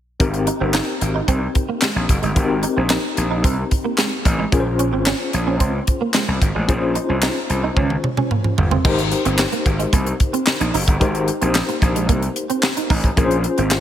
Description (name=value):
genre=early-eighties boogie funk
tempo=111 BPM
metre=4/4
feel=straight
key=Ab major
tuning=A4 = 439 Hz
part: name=tine electric piano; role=accompaniment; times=0.2-13.8 s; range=C4 to C5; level=-24 LUFS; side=left 4 dB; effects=medium tremolo, slapback echo
part: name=gritty slap bass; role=bass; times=0.2-13.8 s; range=Gb1 to Db2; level=-21 LUFS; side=equal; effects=overdrive
part: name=tight funk drum kit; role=drums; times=0.2-13.8 s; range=crash cymbal, handclaps, hi-hat, kick drum, snare drum, toms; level=-19 LUFS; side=equal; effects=none
part: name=clean electric guitar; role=riff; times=0.3-13.7 s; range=Ab3 to Eb4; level=-25 LUFS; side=right 6 dB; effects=ensemble chorus
room=light reverb, studio ambience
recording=faint mains hum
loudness=-16 LUFS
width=side -11 dB against mid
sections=0.2-8.8 A section; 8.8-13.8 B section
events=drum fill 7.8-8.8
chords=0.2 Abmaj7; 4.5 Bbm9; 8.8 Abmaj7; 13.2 Bbm9